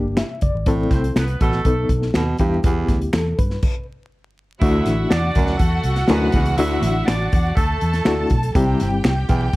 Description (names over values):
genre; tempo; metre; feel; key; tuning
uptempo 1960s-style soul; 122 BPM; 4/4; straight; D mixolydian; A4 = 442 Hz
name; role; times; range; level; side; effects
reed electric piano; accompaniment; 0.0-9.1 s; G3 to E5; -22 LUFS; left 2 dB; fast tremolo, plate reverb
vintage muted fingered electric bass; bass; 0.0-9.5 s; F#1 to G2; -22 LUFS; equal; none
natural country drum kit; drums; 0.2-9.6 s; crash cymbal, hi-hat, kick drum, snare drum; -21 LUFS; equal; none
finger snaps; percussion; 0.2-9.2 s; none; -32 LUFS; right 2 dB; none
clear baritone saxophone; riff; 0.7-9.5 s; D2 to C3; -25 LUFS; right 3 dB; none
bright saxophone section; second line; 0.9-8.3 s; A3 to E5; -27 LUFS; right 1 dB; plate reverb
warm studio violin section; second line; 4.6-9.6 s; F#4 to A5; -26 LUFS; right 1 dB; none
room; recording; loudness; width
light reverb; vinyl crackle, faint mains hum; -16 LUFS; side -19 dB against mid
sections
0.0-4.6 A section; 4.6-9.6 B section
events
stop 3.6-4.6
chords
0.0 Gm; 0.7 Am; 1.7 B7; 2.4 Em; 3.6 N.C.; 4.6 Dadd9; 8.6 C